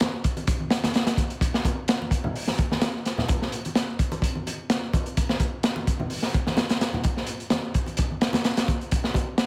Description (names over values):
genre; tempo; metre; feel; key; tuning
breakbeat; 128 BPM; 4/4; swing 54% on 16ths; none; none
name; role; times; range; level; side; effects
crunchy breakbeat drum kit; drums; 0.0-9.5 s; hi-hat, kick drum, snare drum; -26 LUFS; equal; none
congas; percussion; 0.0-9.2 s; none; -36 LUFS; equal; none
room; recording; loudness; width
light reverb; heavily compressed radio sound; -26 LUFS; mono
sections
0.0-9.5 A section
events
none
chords
none